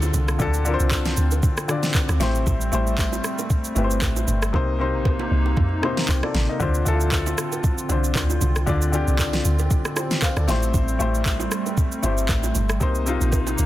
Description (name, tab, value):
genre	amapiano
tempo	116 BPM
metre	4/4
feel	swing 55% on 16ths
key	D minor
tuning	A4 = 441 Hz
part	dark baby grand piano	accompaniment	0.0-13.7 s	C3 to F5	-26 LUFS	left 4 dB	none
part	hollow soft pad	sustained chords	0.0-13.7 s	C3 to F4	-30 LUFS	right 2 dB	chorus, sidechain pumping
part	deep log drum bass	bass	0.0-13.7 s	G1 to D2	-22 LUFS	equal	none
part	smooth R&B drum kit	drums	0.0-13.7 s	handclaps, kick drum, rim click, shaker, snare drum, toms	-24 LUFS	equal	none
part	bongos and congas	percussion	0.0-13.6 s	none	-34 LUFS	right 7 dB	none
room	digital ambience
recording	dense, heavily limited modern master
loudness	-19 LUFS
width	side -14 dB against mid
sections	0.0-13.7 A section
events	hi-hats muted 4.5-6.6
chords	0.0 Dm7; 2.2 Am7; 4.5 Cm7; 6.6 Dm7; 10.5 Am7; 12.8 Cm7